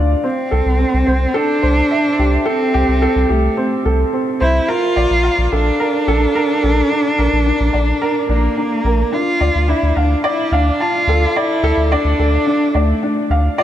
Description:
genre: piano and strings electronica.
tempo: 108 BPM.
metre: 4/4.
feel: straight.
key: D minor.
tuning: A4 = 439 Hz.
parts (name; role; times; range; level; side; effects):
dark upright piano; riff; 0.0-13.6 s; C4 to A5; -18 LUFS; right 1 dB; ping-pong delay.
warm sub bass; bass; 0.0-13.5 s; Bb1 to D2; -16 LUFS; equal; none.
dark cello; melody; 0.2-13.6 s; A3 to F4; -17 LUFS; equal; none.
room: light reverb.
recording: none.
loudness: -13 LUFS.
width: side -11 dB against mid.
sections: 0.0-13.6 A section.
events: none.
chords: 0.2 C6; 4.7 Bbmaj7; 9.1 Dm.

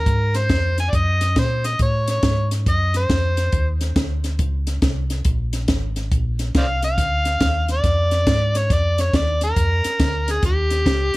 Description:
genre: electric blues shuffle.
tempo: 139 BPM.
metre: 4/4.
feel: swing 64% on 8ths.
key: unclear.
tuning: A4 = 440 Hz.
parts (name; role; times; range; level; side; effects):
overdriven harmonica; melody; 0.0-3.8, 6.6-11.2 s; G4 to Ab5; -22 LUFS; equal; none.
fingered electric bass; bass; 0.0-11.2 s; Ab1 to Bb2; -21 LUFS; equal; none.
compact cocktail drum kit; drums; 0.1-11.2 s; hi-hat, kick drum, snare drum; -22 LUFS; equal; none.
room: light reverb.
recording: none.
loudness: -17 LUFS.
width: side -20 dB against mid.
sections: 0.0-11.2 A section.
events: none.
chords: 0.1 Ab7; 1.8 F(b9b13); 3.5 Cmadd9; 5.3 Bb7; 10.4 Eb7.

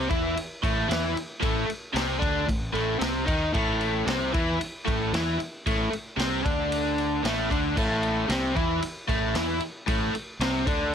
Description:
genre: garage rock duo or trio.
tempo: 114 BPM.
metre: 4/4.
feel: straight.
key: unclear.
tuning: A4 = 440 Hz.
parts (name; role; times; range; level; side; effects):
overdriven electric guitar; riff; 0.0-10.9 s; A2 to E4; -26 LUFS; left 1 dB; none.
fuzz fingered electric bass; bass; 0.0-10.9 s; A1 to E2; -32 LUFS; equal; overdrive.
vintage drum kit; drums; 0.1-10.8 s; crash cymbal, kick drum, ride cymbal, snare drum; -30 LUFS; equal; none.
room: studio reverb.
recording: none.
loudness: -24 LUFS.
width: side -8 dB against mid.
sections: 0.0-10.9 A section.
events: none.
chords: 0.0 A5.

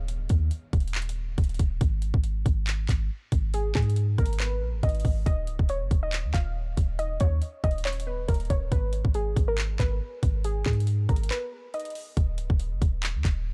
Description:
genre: hip hop, trap.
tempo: 139 BPM.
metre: 4/4.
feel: half-time.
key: unclear.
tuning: A4 = 439 Hz.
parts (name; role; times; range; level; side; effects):
warbly dusty pluck; melody; 0.0, 3.5-12.1 s; Ab4 to F5; -36 LUFS; equal; chorus, low-pass filter, digital delay.
clean 808-style bass; bass; 0.0-13.5 s; Db1 to Ab2; -30 LUFS; equal; none.
trap drum kit; drums; 0.1-13.4 s; handclaps, hi-hat, kick drum; -28 LUFS; equal; none.
room: little or no reverb.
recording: dark, warm production.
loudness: -27 LUFS.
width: mono.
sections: 0.0-13.5 A section.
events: break 0.1-3.5, 11.3-12.2.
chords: 0.0 N.C.; 1.8 Abm; 5.3 N.C.; 8.7 Abm; 12.2 N.C..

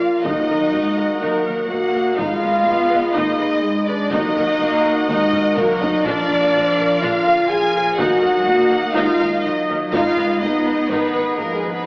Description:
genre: cinematic, epic orchestral film score.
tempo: 124 BPM.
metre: 4/4.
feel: straight.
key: Eb harmonic minor.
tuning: A4 = 436 Hz.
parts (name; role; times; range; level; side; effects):
warm symphonic violin section; melody; 0.0-11.9 s; Ab4 to Ab5; -24 LUFS; equal; none.
warm symphonic violin section; second line; 0.0-11.9 s; Ab4 to Ab5; -25 LUFS; equal; none.
rich symphonic viola section; accompaniment; 0.0-11.8 s; D4 to Gb5; -25 LUFS; equal; none.
bright woodwind section; sustained chords; 0.0-11.9 s; Ab3 to Cb6; -26 LUFS; equal; none.
warm French horn section; sustained chords; 0.0-11.9 s; Ab3 to Ab4; -18 LUFS; equal; none.
dark studio double bass section; bass; 0.0-11.7 s; Ab1 to Eb2; -33 LUFS; equal; none.
warm symphonic cello section; bass; 0.0-11.9 s; D3 to Cb4; -26 LUFS; equal; none.
taiko ensemble; drums; 0.2-10.6 s; none; -31 LUFS; equal; none.
timpani; percussion; 0.3-0.9, 4.1-6.7 s; Bb2 to Eb3; -33 LUFS; equal; none.
room: wet scoring stage reverb, RT60 1.8 s.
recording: AM radio sound.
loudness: -15 LUFS.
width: side -28 dB against mid.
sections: 0.0-11.9 A section.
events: drum fill 5.3-6.1.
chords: 0.3 Ebm; 2.2 Abm; 4.1 Ebm; 6.1 Bb; 8.0 Ebm; 9.9 Abm.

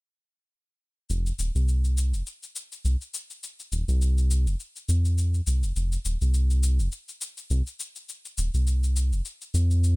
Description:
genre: organic downtempo.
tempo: 103 BPM.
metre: 4/4.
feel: swing 56% on 16ths.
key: unclear.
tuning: A4 = 435 Hz.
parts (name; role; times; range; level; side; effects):
round analog bass; bass; 1.1-10.0 s; Eb1 to F2; -22 LUFS; equal; none.
cabasa; drums; 1.1-10.0 s; none; -36 LUFS; left 4 dB; none.
room: little or no reverb.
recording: none.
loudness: -24 LUFS.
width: side -26 dB against mid.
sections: 1.1-10.0 A section.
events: filter sweep on analog synth bass 1.1-10.0.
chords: none.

